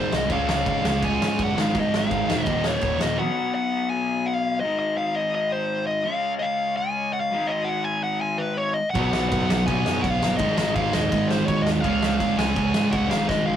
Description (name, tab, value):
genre	punk rock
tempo	166 BPM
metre	4/4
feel	straight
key	unclear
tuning	A4 = 440 Hz
part	dark smooth lead guitar	melody	0.0-13.6 s	Cb5 to Ab5	-25 LUFS	left 1 dB	overdrive
part	raw garage guitar	riff	0.0-13.6 s	Eb2 to Db4	-28 LUFS	left 4 dB	overdrive
part	sludgy distorted guitar	riff	0.0-3.2, 8.9-13.6 s	Eb2 to Db4	-27 LUFS	right 5 dB	overdrive
part	thick fuzz guitar	riff	0.0-3.2, 8.9-13.6 s	Eb2 to Db4	-27 LUFS	right 1 dB	distortion
part	overdriven picked electric bass	bass	0.0-3.2, 9.0-13.6 s	Eb1 to Ab2	-31 LUFS	equal	none
part	loose indie drum kit	drums	0.1-3.1, 8.9-13.4 s	crash cymbal, kick drum, snare drum	-27 LUFS	equal	none
room	moderate small room ambience, RT60 0.5 s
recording	rough rehearsal-room recording, warm saturation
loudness	-21 LUFS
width	side -10 dB against mid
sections	0.0-3.2 A section; 3.2-13.6 A section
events	drum fill 13.3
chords	0.3 Db; 1.6 Ab5; 2.5 Eb5; 3.2 B5; 4.6 Ab; 6.1 Db; 7.3 Ab5; 9.0 B5; 10.4 Ab5; 11.8 Db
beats	| 0.30 0.66 1.02 1.38 | 1.75 2.10 2.46 2.83 | 3.19 3.55 3.91 4.27 | 4.63 4.99 5.35 5.71 | 6.07 6.43 6.79 7.15 | 7.51 7.87 8.23 8.59 | 8.95 9.31 9.68 10.04 | 10.40 10.76 11.12 11.48 | 11.84 12.20 12.56 12.93 | 13.29